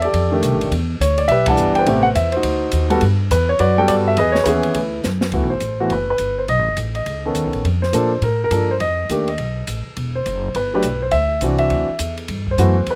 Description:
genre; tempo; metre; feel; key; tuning
jazz piano trio; 207 BPM; 4/4; swing 62% on 8ths; unclear; A4 = 441 Hz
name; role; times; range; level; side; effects
warm baby grand piano; melody; 0.0-13.0 s; C3 to A5; -20 LUFS; equal; none
upright bass; bass; 0.0-13.0 s; E1 to Bb2; -23 LUFS; equal; none
open jazz drum kit; drums; 0.0-13.0 s; hi-hat, kick drum, ride cymbal, snare drum; -31 LUFS; equal; none
room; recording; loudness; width
little or no reverb; recorded outdoors, with no room sound; -18 LUFS; mono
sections
0.0-5.3 A section; 5.3-13.0 B section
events
band accent 1.4; drum fill 5.0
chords
0.1 F13; 0.7 Em9; 1.9 Am9; 2.4 D7b9; 3.0 Gmaj9; 4.2 C#m7; 4.8 D69; 5.3 Gmaj13; 6.5 B9; 7.7 Bbmaj7; 8.8 F7; 10.0 Emadd9; 11.1 D9; 12.3 Gmaj13

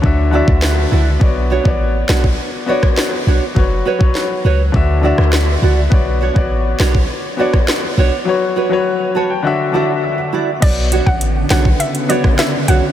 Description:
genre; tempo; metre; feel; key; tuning
dancehall; 102 BPM; 4/4; straight; B minor; A4 = 441 Hz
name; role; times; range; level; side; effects
warm grand piano; accompaniment; 0.0-12.9 s; D3 to A5; -19 LUFS; left 4 dB; sidechain pumping
clean 808-style bass; bass; 0.0-12.8 s; F#1 to D2; -14 LUFS; equal; none
island pop drum kit; drums; 0.0-12.8 s; crash cymbal, hi-hat, kick drum, rim click, snare drum; -17 LUFS; equal; none
nylon-string guitar; arpeggios; 0.3-12.8 s; D4 to D5; -21 LUFS; right 6 dB; wide subtle chorus
hollow square pluck; melody; 10.6-12.8 s; D5 to F#5; -21 LUFS; equal; chorus, tape echo
lush unison pad; sustained chords; 10.6-12.9 s; C#3 to B3; -21 LUFS; right 1 dB; chorus, sidechain pumping
room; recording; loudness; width
moderate huge ambient reverb, RT60 4.5 s; dreamy mix soaked in reverb; -12 LUFS; side -11 dB against mid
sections
0.0-10.6 A section; 10.6-12.9 B section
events
break 0.0-1.2; grand piano fill 8.9-10.6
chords
0.0 Dadd9; 1.2 Bmadd9; 3.6 F#sus4; 4.7 Dadd9; 5.9 Bmadd9; 8.3 F#sus4; 9.4 Dadd9; 10.6 Bmadd9

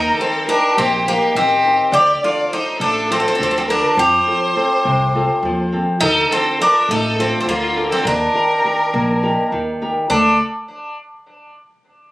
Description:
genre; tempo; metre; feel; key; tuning
greek folk, Greek bouzouki band; 206 BPM (eighths); 7/8; straight; D phrygian; A4 = 445 Hz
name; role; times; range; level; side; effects
Greek bouzouki; melody; 0.0-10.4 s; Bb3 to G4; -17 LUFS; equal; tape echo
rich violin; second line; 0.0-10.4 s; F4 to D5; -19 LUFS; left 1 dB; none
flamenco guitar; accompaniment; 0.0-10.4 s; C3 to Bb4; -21 LUFS; equal; none
upright bass; bass; 0.0-10.4 s; A1 to F2; -26 LUFS; equal; none
room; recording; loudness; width
moderate studio reverb, RT60 0.6 s; recorded on a phone in the room, studio ambience; -14 LUFS; side -17 dB against mid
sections
0.0-10.1 A section; 10.1-12.1 B section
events
none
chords
0.0 Eb; 1.9 Dm; 4.0 F; 6.0 Dm; 8.1 Eb; 10.1 D5

